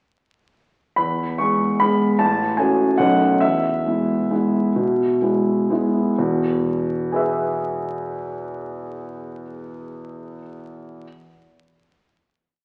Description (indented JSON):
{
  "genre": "classical, piano waltz",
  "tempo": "119-165 BPM",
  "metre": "3/4",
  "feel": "rubato",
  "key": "E major",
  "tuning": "A4 = 440 Hz",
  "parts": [
    { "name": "warm concert grand piano", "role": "solo", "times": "1.0-11.0 s", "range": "A1 to C#6", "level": "-21 LUFS", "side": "equal", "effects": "none" }
  ],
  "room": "wet recital hall reverb, RT60 1.7 s",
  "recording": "very old 78 rpm record, vinyl crackle",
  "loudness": "-20 LUFS",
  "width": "mono",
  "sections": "1.0-6.2 A section; 6.2-8.9 final chord",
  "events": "slowing down 2.8-6.2",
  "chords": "1.0 E; 2.2 F#m/A; 3.0 B9; 3.4 E",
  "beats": "| 0.98 1.40 1.82 | 2.21 2.58 2.98 | 3.41 3.85 4.31 | 4.76 5.21 5.70 | 6.19 6.64 7.12 | 7.58 8.03 8.49"
}